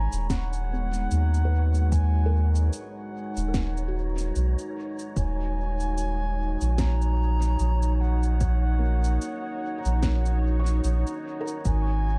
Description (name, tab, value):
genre	ambient dub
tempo	74 BPM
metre	4/4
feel	swing 57% on 16ths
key	unclear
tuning	A4 = 440 Hz
part	wooden flute	melody	0.0-12.2 s	F#5 to A#5	-39 LUFS	equal	dub echo
part	deep dark ambient pad	sustained chords	0.0-12.2 s	G#3 to A#5	-37 LUFS	equal	chorus, built-in reverb
part	felt-muted upright piano	arpeggios	0.0-12.2 s	A#3 to C#6	-42 LUFS	equal	dub echo
part	soft dub sub bass	bass	0.0-12.2 s	D#1 to D#2	-26 LUFS	equal	none
part	wind-like tuned noise texture	texture	0.0-12.2 s	C#5	-45 LUFS	equal	built-in reverb
part	electronic cabasa and snare drum	drums	0.1-11.8 s	none	-39 LUFS	equal	dub echo
part	electronic kick drum	drums	0.3-11.8 s	none	-31 LUFS	equal	none
room	little or no reverb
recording	dark, warm production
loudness	-26 LUFS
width	mono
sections	0.0-12.2 A section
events	none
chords	0.0 D#m7; 11.7 G#7(no3)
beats	0.30 1.11 | 1.92 2.73 3.54 4.36 | 5.17 5.98 6.79 7.60 | 8.41 9.22 10.03 10.84 | 11.65